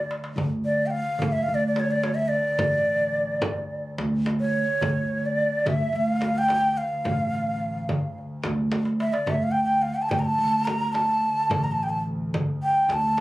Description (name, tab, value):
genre	Arabic maqam ensemble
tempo	108 BPM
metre	4/4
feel	straight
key	D maqam nahawand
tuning	A4 = 439 Hz
part	breathy reedy ney	melody	0.0-13.2 s	C#5 to Bb5	-23 LUFS	equal	none
part	warm double bass	drone	0.0-13.2 s	D2	-37 LUFS	equal	none
part	darbuka	percussion	0.1-13.2 s	none	-32 LUFS	right 1 dB	none
part	upright bass	bass	0.4-13.2 s	A1 to D2	-28 LUFS	right 1 dB	none
part	frame drum	percussion	0.4-13.2 s	none	-31 LUFS	equal	none
room	little or no reverb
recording	recorded on a phone in the room, club reverb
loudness	-22 LUFS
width	side -17 dB against mid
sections	0.4-13.2 A section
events	drum fill 0.0-0.4, 8.7-9.3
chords	none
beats	| 0.37 0.93 1.49 2.04 | 2.60 3.15 3.71 4.27 | 4.82 5.38 5.94 6.49 | 7.05 7.61 8.16 8.72 | 9.28 9.83 10.39 10.95 | 11.51 12.06 12.62 13.18